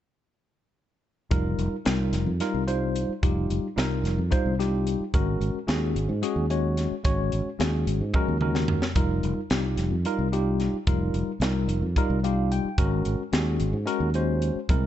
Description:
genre	electric jazz fusion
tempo	220 BPM (eighths)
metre	7/8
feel	straight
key	unclear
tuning	A4 = 440 Hz
part	bright tine electric piano	accompaniment	1.3-14.9 s	G3 to G5	-28 LUFS	left 2 dB	medium stereo tremolo
part	fingered electric bass	bass	1.3-14.9 s	F1 to Ab2	-26 LUFS	equal	none
part	crisp fusion drum kit	drums	1.3-14.8 s	hi-hat, kick drum, snare drum, toms	-27 LUFS	equal	none
room	light reverb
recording	dark, warm production, nothing above 8.0 kHz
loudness	-23 LUFS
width	side -12 dB against mid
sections	1.3-14.9 A section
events	drum fill 8.1-9.0; tine electric piano fill 12.0-12.8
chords	1.3 F9sus4; 5.1 Ab9sus4; 9.0 F9sus4; 12.8 Ab9sus4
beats	| 1.33 1.60 1.87 2.14 2.42 2.69 2.96 | 3.23 3.51 3.78 4.05 4.33 4.60 4.87 | 5.14 5.42 5.69 5.96 6.23 6.51 6.78 | 7.05 7.33 7.60 7.87 8.14 8.42 8.69 | 8.96 9.23 9.51 9.78 10.05 10.33 10.60 | 10.87 11.14 11.42 11.69 11.96 12.24 12.51 | 12.78 13.05 13.33 13.60 13.87 14.15 14.42 | 14.69

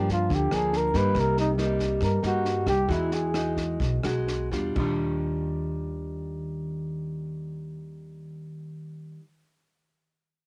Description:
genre	bossa nova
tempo	120-141 BPM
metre	4/4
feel	straight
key	Eb major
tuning	A4 = 441 Hz
part	mellow flugelhorn	melody	0.0-3.6 s	Eb4 to Cb5	-29 LUFS	equal	cassette tape
part	nylon-string guitar	accompaniment	0.0-9.3 s	G2 to F#4	-32 LUFS	equal	cassette tape
part	upright bass	bass	0.0-9.2 s	B1 to G2	-33 LUFS	equal	none
part	compact cocktail drum kit	drums	0.1-4.9 s	china cymbal, kick drum, rim click, snare drum, toms	-36 LUFS	equal	cassette tape
room	light reverb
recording	home recording on cassette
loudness	-27 LUFS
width	mono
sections	0.0-4.8 A section; 4.8-8.8 B section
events	flugelhorn solo 0.0-4.8; slowing down 1.2-4.8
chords	0.0 Gm7; 1.2 Cm7; 2.9 Emaj9; 4.8 Ebmaj9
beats	0.30 0.73 | 1.15 1.58 2.01 2.44 | 2.88 3.33 3.80 4.27 | 4.76 5.26 5.76 6.26 | 6.76 7.26 7.76 8.25

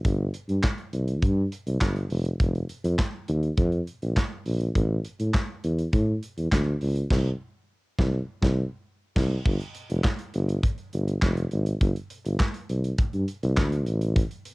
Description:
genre	early-eighties boogie funk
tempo	102 BPM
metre	4/4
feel	straight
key	G dorian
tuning	A4 = 437 Hz
part	mellow tuba	bass	0.0-14.2 s	F1 to A2	-25 LUFS	equal	none
part	modern studio drum kit	drums	0.0-14.5 s	crash cymbal, handclaps, hi-hat, kick drum, snare drum	-25 LUFS	equal	cassette tape
room	little or no reverb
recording	home recording on cassette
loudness	-24 LUFS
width	side -25 dB against mid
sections	0.0-9.5 A section; 9.5-14.5 B section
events	band accent 7.1-9.5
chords	none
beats	| 0.05 0.63 1.22 1.81 | 2.40 2.99 3.58 4.16 | 4.75 5.34 5.93 6.52 | 7.10 7.69 8.28 8.87 | 9.46 10.05 10.63 11.22 | 11.81 12.40 12.99 13.57 | 14.16

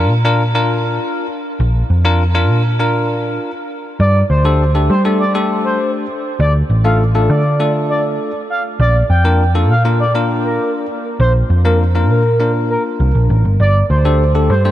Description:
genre	dance-pop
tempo	100 BPM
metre	4/4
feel	straight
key	G minor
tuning	A4 = 439 Hz
part	bell-like tine electric piano	accompaniment	0.0-14.7 s	A3 to C5	-19 LUFS	left 2 dB	wide subtle chorus
part	hollow-body short-scale picked electric bass	bass	0.0-14.7 s	G1 to G3	-13 LUFS	equal	none
part	expressive synth lead	melody	4.0-14.6 s	Bb4 to G5	-18 LUFS	right 1 dB	chorus, analog delay
room	moderate huge ambient reverb, RT60 4.9 s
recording	dreamy mix soaked in reverb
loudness	-12 LUFS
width	side -13 dB against mid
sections	0.0-4.0 A section; 4.0-14.7 A section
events	none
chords	0.0 Bb; 4.0 Gsus2; 6.4 Dm; 8.8 Bb; 13.6 Gsus2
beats	0.40 1.00 | 1.60 2.20 2.80 3.40 | 4.00 4.60 5.20 5.80 | 6.40 7.00 7.60 8.20 | 8.80 9.40 10.00 10.60 | 11.20 11.80 12.40 13.00 | 13.60 14.20

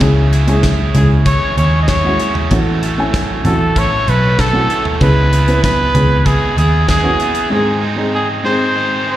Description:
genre	piano-driven pop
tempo	96 BPM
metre	4/4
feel	straight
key	C# minor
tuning	A4 = 440 Hz
part	dark upright piano	accompaniment	0.0-9.2 s	G#2 to G#5	-19 LUFS	left 1 dB	slapback echo
part	cranked stack guitar	riff	0.0-9.2 s	G#2 to A4	-21 LUFS	right 6 dB	overdrive, slapback echo
part	vintage muted picked electric bass	bass	0.0-7.2 s	A1 to D#2	-14 LUFS	equal	none
part	modern studio drum kit	drums	0.0-7.5 s	hi-hat, kick drum, snare drum, toms	-19 LUFS	equal	none
part	clear trumpet	melody	1.0-9.2 s	G#4 to D#5	-17 LUFS	equal	slapback echo
room	light reverb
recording	live gig heard through the venue's PA, recital hall reverb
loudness	-11 LUFS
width	side -13 dB against mid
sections	0.0-9.2 A section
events	break 7.5-9.2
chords	0.0 C#m; 2.5 A6; 5.0 C#m7; 7.5 G#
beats	| 0.01 0.64 1.26 1.89 | 2.51 3.14 3.76 4.39 | 5.01 5.64 6.26 6.89 | 7.51 8.14 8.76

